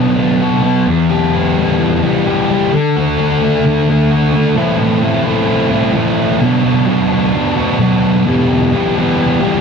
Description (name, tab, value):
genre	rock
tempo	130 BPM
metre	4/4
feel	straight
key	A dorian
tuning	A4 = 445 Hz
part	sludgy distorted guitar	solo	0.0-9.6 s	E2 to G4	-11 LUFS	equal	overdrive
room	moderate booth ambience, RT60 0.2 s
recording	dry, close 1970s-style studio recording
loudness	-11 LUFS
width	side -6 dB against mid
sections	0.0-4.6 A section; 4.6-9.6 B section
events	none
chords	0.0 Bm; 0.9 Em; 2.7 D; 4.6 Am; 6.4 Bm; 8.3 Em